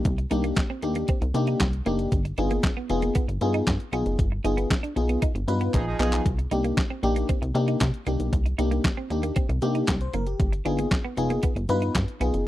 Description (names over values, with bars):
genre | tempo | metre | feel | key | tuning
early-eighties boogie funk | 116 BPM | 4/4 | straight | C minor | A4 = 440 Hz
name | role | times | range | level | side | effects
FM electric piano with soft pad layer | accompaniment | 0.0-12.4 s | Bb3 to C5 | -27 LUFS | left 2 dB | chorus
plucky analog bass | bass | 0.0-12.4 s | F1 to C3 | -26 LUFS | equal | none
clean 12-bit digital drum machine | drums | 0.1-12.5 s | handclaps, hi-hat, kick drum, snare drum | -25 LUFS | equal | overdrive
clean electric guitar | riff | 0.2-12.3 s | Bb3 to Eb4 | -32 LUFS | right 5 dB | wide subtle chorus
analog synth brass | second line | 5.7-6.2 s | F3 to Ab4 | -29 LUFS | right 4 dB | chorus
room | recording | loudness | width
little or no reverb | dry, close 1970s-style studio recording | -22 LUFS | side -14 dB against mid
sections
0.0-12.5 A section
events
band accent 4.2-6.3; drum fill 5.7-6.3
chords
0.0 Cm7; 2.1 G7b9b13; 6.3 Cm7; 10.4 G7b9b13